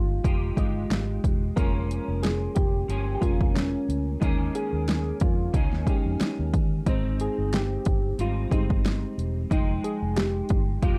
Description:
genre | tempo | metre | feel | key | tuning
indie pop, bedroom pop | 91 BPM | 4/4 | swing 55% on 16ths | Ab major | A4 = 441 Hz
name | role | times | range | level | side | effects
soft electric-piano-like synth keys | melody | 0.0-11.0 s | Db4 to Bb4 | -35 LUFS | equal | analog chorus, tape echo
clean electric guitar | accompaniment | 0.0-11.0 s | Ab2 to Ab4 | -38 LUFS | equal | ensemble chorus, warbly pitch drift
reed electric piano | accompaniment | 0.0-11.0 s | F3 to G5 | -36 LUFS | equal | none
vintage muted fingered electric bass | bass | 0.0-11.0 s | Fb1 to Eb3 | -31 LUFS | equal | none
deep house drum kit | drums | 0.2-11.0 s | hi-hat, kick drum, snare drum | -27 LUFS | equal | overdrive
room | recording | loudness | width
moderate studio ambience, RT60 0.5 s | dark, warm production | -26 LUFS | mono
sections
0.0-11.0 A section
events
none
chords
0.0 Fm9; 1.6 Db6/F; 4.2 Eb7sus4; 6.9 Abmaj7; 9.5 Fm9

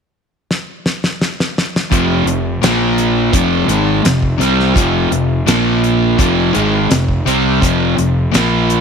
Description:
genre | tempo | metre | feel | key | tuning
classic rock | 84 BPM | 4/4 | straight | F minor | A4 = 440 Hz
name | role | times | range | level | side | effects
damped 70s drum kit | drums | 0.5-8.8 s | hi-hat, kick drum, snare drum | -17 LUFS | equal | none
crunchy overdriven guitar | riff | 1.9-8.8 s | F2 to C4 | -16 LUFS | right 11 dB | none
overdriven semi-hollow guitar | riff | 1.9-8.8 s | F2 to C4 | -16 LUFS | left 10 dB | none
fuzz fingered electric bass | bass | 1.9-8.8 s | F1 to C2 | -18 LUFS | equal | overdrive
room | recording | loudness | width
light reverb, studio ambience | 1960s-style stereo with parts hard left and right | -12 LUFS | side -6 dB against mid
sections
0.0-1.9 A section; 1.9-8.8 B section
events
drum fill 0.5-1.9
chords
0.0 N.C.; 1.9 F5; 2.6 Bb5; 3.3 Fm; 5.5 Bb5; 6.2 Fm

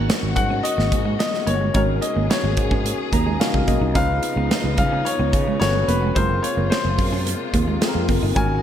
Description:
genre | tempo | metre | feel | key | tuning
polished 1980s jazz-funk pop | 109 BPM | 4/4 | straight | unclear | A4 = 440 Hz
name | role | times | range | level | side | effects
clear baby grand piano | melody | 0.0-8.6 s | B4 to Ab5 | -25 LUFS | left 4 dB | none
barky tine electric piano | accompaniment | 0.0-8.6 s | C4 to Bb5 | -27 LUFS | left 1 dB | overdrive, wide subtle chorus
warm studio string section | sustained chords | 0.0-8.6 s | C3 to Ab4 | -30 LUFS | left 2 dB | none
clean electric guitar | riff | 0.0-8.5 s | Ab3 to Eb4 | -28 LUFS | right 6 dB | wide subtle chorus
sustaining fretless electric bass | bass | 0.0-8.6 s | F1 to Db3 | -23 LUFS | equal | none
modern studio drum kit | drums | 0.1-8.5 s | hi-hat, kick drum, snare drum | -23 LUFS | right 1 dB | gated reverb
congas | percussion | 0.1-8.5 s | none | -35 LUFS | left 2 dB | none
room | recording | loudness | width
moderate lush hall reverb, RT60 2.1 s | bright 1980s-style digital production | -18 LUFS | side -10 dB against mid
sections
0.0-8.6 A section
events
tine electric piano fill 2.9-4.0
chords
0.0 Ab9sus4; 4.0 Db9; 5.6 Gmaj9#11; 6.2 Gbmaj9#11

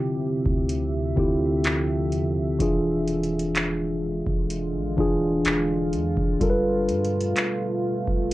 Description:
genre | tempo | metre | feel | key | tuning
contemporary R&B | 63 BPM | 4/4 | straight | unclear | A4 = 440 Hz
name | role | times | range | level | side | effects
mellow tine electric piano | accompaniment | 0.0-8.3 s | D3 to B4 | -24 LUFS | equal | slow stereo tremolo
deep dark ambient pad | sustained chords | 0.0-8.3 s | B2 to E5 | -31 LUFS | right 2 dB | chorus, built-in reverb
long sustained 808-style bass | bass | 0.5-8.3 s | E1 to G2 | -31 LUFS | equal | none
booming analog drum machine | drums | 0.5-8.3 s | handclaps, hi-hat, kick drum | -26 LUFS | equal | vintage 12-bit sampler grit
room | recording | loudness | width
light reverb | cassette tape | -22 LUFS | side -16 dB against mid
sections
0.0-8.3 A section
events
none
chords
0.0 Dm11; 2.6 E7b9; 6.4 G9

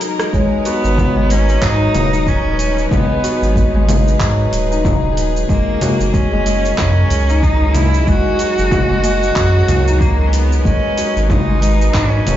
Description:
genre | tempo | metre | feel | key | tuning
organic downtempo | 93 BPM | 4/4 | swing 58% on 16ths | G# minor | A4 = 440 Hz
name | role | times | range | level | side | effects
clear symphonic string section | sustained chords | 0.0-12.4 s | F#3 to B4 | -26 LUFS | equal | sidechain pumping
Celtic harp | arpeggios | 0.0-12.4 s | F#3 to F#4 | -19 LUFS | left 3 dB | digital delay
deep house drum kit | drums | 0.0-12.4 s | congas, handclaps, hi-hat, rim click, shaker | -22 LUFS | left 1 dB | none
rich cello | melody | 0.3-12.4 s | G#3 to F#4 | -20 LUFS | right 1 dB | ping-pong delay
round analog bass | bass | 0.3-12.4 s | D#1 to G#2 | -16 LUFS | equal | sidechain pumping
electronic kick drum | drums | 0.3-12.1 s | none | -18 LUFS | equal | none
quartz singing bowl | texture | 0.3-12.4 s | C#5 | -30 LUFS | right 6 dB | none
room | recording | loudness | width
light reverb, small room ambience | played on a big sound system in a bare room, stone room reverb, nothing above 7.5 kHz | -12 LUFS | side -12 dB against mid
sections
0.0-12.4 A section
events
break 0.0-0.3; drum fill 0.0-0.3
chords
0.3 G#m; 5.5 F#; 10.7 G#m

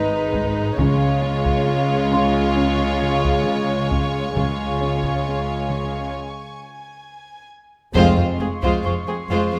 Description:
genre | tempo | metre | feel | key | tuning
cinematic, suspense film score | 67 BPM | 4/4 | straight | unclear | A4 = 440 Hz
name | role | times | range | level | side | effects
warm chamber violin section | melody | 0.0-9.6 s | Ab4 to Db5 | -30 LUFS | equal | none
warm chamber violin section | second line | 0.0-9.6 s | C4 to F4 | -27 LUFS | equal | none
dark chamber viola section | accompaniment | 0.0-9.6 s | Ab3 | -28 LUFS | equal | none
dark chamber cello section | riff | 0.0-9.6 s | F2 to Db4 | -29 LUFS | equal | none
dark chamber cello section | bass | 0.0-9.6 s | F2 to Db3 | -28 LUFS | equal | none
warm chamber double bass section | bass | 0.0-9.4 s | F1 to Db2 | -30 LUFS | equal | none
small celesta | texture | 0.0-9.6 s | Db5 to Db6 | -33 LUFS | equal | none
warm chamber violin section | texture | 0.0-9.6 s | Ab5 to Eb6 | -35 LUFS | equal | none
taiko ensemble | drums | 0.3-9.5 s | none | -29 LUFS | equal | none
warm French horn section | sustained chords | 7.9-8.4 s | Ab3 to C4 | -30 LUFS | equal | none
room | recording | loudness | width
moderate scoring stage reverb, RT60 1.5 s | none | -20 LUFS | mono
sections
0.0-7.9 A section; 7.9-9.6 B section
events
break 6.2-7.9; drum fill 7.1-7.9; band accent 7.9-8.8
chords
0.0 Abm; 0.8 Db; 7.9 Fm

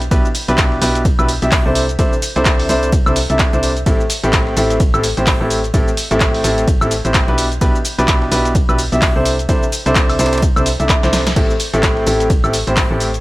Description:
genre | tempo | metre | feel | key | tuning
piano house | 128 BPM | 4/4 | swing 59% on 16ths | A minor | A4 = 438 Hz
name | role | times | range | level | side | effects
solid FM bass | bass | 0.0-13.2 s | A1 to C2 | -20 LUFS | equal | tube saturation, sidechain pumping
punchy analog drum machine | drums | 0.0-13.2 s | crash cymbal, handclaps, hi-hat, shaker, snare drum, woodblock | -19 LUFS | equal | none
clear grand piano | riff | 0.1-13.1 s | A2 to E5 | -17 LUFS | equal | sidechain pumping, dub echo
breakbeat sampler-style drum kit | drums | 0.1-13.1 s | hi-hat, ride cymbal, snare drum | -30 LUFS | right 1 dB | none
electronic kick drum | drums | 0.1-12.9 s | none | -16 LUFS | equal | none
room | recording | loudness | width
little or no reverb | none | -12 LUFS | side -19 dB against mid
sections
0.0-13.2 A section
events
drum fill 11.0-11.4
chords
0.0 Em7/B; 1.8 C69; 3.9 Am7; 7.4 Em7/B; 9.3 C69; 11.4 Am7

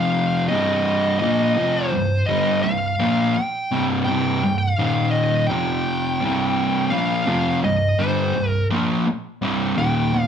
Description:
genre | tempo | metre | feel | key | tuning
metal | 84 BPM | 4/4 | straight | C minor | A4 = 438 Hz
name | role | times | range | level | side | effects
fuzz lead guitar | melody | 0.0-10.3 s | C5 to G5 | -23 LUFS | left 1 dB | distortion
fuzz guitar | riff | 0.0-10.3 s | C2 to Bb3 | -20 LUFS | equal | distortion
room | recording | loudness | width
moderate large studio reverb, RT60 0.9 s | band playing live in one room | -18 LUFS | side -8 dB against mid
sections
0.0-10.3 A section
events
none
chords
0.5 Cm; 4.8 Eb5; 5.5 F5; 6.2 C5

